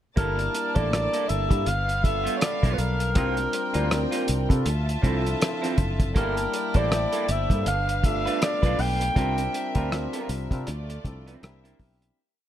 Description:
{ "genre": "lush 1970s-style soul", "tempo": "80 BPM", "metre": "4/4", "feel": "swing 58% on 16ths", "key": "G dorian", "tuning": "A4 = 442 Hz", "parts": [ { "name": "warm alto saxophone", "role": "melody", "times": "0.2-10.3 s", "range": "Bb4 to G5", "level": "-28 LUFS", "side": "equal", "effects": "none" }, { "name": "warm studio violin section", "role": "second line", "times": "0.2-12.2 s", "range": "A3 to A5", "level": "-34 LUFS", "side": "equal", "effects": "none" }, { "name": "barky tine electric piano", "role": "accompaniment", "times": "0.2-12.2 s", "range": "F3 to A5", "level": "-32 LUFS", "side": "left 3 dB", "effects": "overdrive, lush chorus" }, { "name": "electric guitar through a small old amp", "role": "riff", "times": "0.2-12.1 s", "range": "F3 to B4", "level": "-34 LUFS", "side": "right 6 dB", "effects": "none" }, { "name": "fingered electric bass", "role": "bass", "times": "0.2-12.1 s", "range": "F#1 to C3", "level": "-27 LUFS", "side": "equal", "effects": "none" }, { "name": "cloth-damped thuddy drum kit", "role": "drums", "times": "0.2-12.2 s", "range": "hi-hat, kick drum, rim click", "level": "-25 LUFS", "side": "equal", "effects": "none" } ], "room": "light reverb, small room ambience", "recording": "none", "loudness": "-22 LUFS", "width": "side -11 dB against mid", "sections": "0.2-12.2 verse", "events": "fade-out 9.2-12.2", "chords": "0.2 Gm69; 1.7 G7; 3.2 C7sus4; 4.7 Dm9; 6.2 Gm69; 7.7 G7; 9.2 C7sus4; 10.7 Dm9; 11.4 C9" }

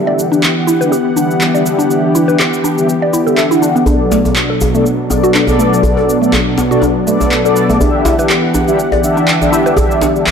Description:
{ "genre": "afro house", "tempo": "122 BPM", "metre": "4/4", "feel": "swing 55% on 16ths", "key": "unclear", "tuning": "A4 = 440 Hz", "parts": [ { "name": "warm analog pad", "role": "sustained chords", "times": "0.0-10.3 s", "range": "B2 to F#5", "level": "-16 LUFS", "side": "left 1 dB", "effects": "chorus, tremolo" }, { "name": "mellow synth brass", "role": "stabs", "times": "0.0-10.3 s", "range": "B3 to F#5", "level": "-15 LUFS", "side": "left 1 dB", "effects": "chorus, tape echo" }, { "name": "mallet-like synth pluck", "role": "arpeggios", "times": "0.1-10.1 s", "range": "A3 to D5", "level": "-16 LUFS", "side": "equal", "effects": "chorus, phaser, tape echo" }, { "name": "electronic shaker and handclaps", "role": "drums", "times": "0.2-10.3 s", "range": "none", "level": "-18 LUFS", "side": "equal", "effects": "none" }, { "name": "djembe", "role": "percussion", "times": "3.9-10.3 s", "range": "none", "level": "-17 LUFS", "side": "equal", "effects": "none" } ], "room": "moderate lush hall reverb, RT60 2.3 s", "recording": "dark, warm production", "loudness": "-10 LUFS", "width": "side -6 dB against mid", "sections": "0.0-10.3 A section", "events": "filter sweep on analog polysynth 0.0-10.3", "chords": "0.0 Em7; 3.9 Bm7; 7.8 Em7" }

